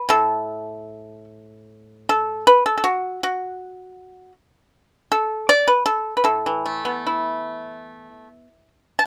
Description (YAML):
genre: chinese traditional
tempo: 73-80 BPM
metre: 2/4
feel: rubato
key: A zhi mode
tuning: A4 = 437 Hz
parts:
  - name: pipa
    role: solo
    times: 0.0-9.1 s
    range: A2 to A5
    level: -20 LUFS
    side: equal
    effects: none
room: little or no reverb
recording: close, detailed microphones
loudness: -20 LUFS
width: mono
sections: 0.0-1.7 A section; 1.7-9.1 B section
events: none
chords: none